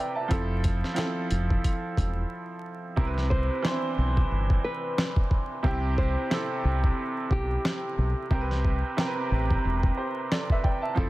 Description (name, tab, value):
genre	hip hop, boom-bap hip-hop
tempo	90 BPM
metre	4/4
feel	swing 59% on 16ths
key	C major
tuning	A4 = 440 Hz
part	bright upright piano	accompaniment	0.0-11.1 s	C3 to A5	-30 LUFS	right 2 dB	high-pass filter, low-pass filter
part	deep dub fingered electric bass	bass	0.3-11.1 s	E1 to C2	-27 LUFS	equal	none
part	dusty soul sampler-style drum kit	drums	0.3-11.1 s	hi-hat, kick drum, snare drum	-26 LUFS	equal	vintage 12-bit sampler grit
part	nylon-string guitar	melody	3.3-8.3 s	G4 to C5	-34 LUFS	equal	high-pass filter, low-pass filter, ping-pong delay
room	studio reverb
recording	dense, heavily limited modern master, vinyl crackle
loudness	-24 LUFS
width	side -18 dB against mid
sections	0.0-3.0 A section; 3.0-11.1 B section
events	break 2.3-3.0; hi-hats muted 3.0-11.1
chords	0.3 Fmaj7; 3.0 Cmaj7; 8.3 Am7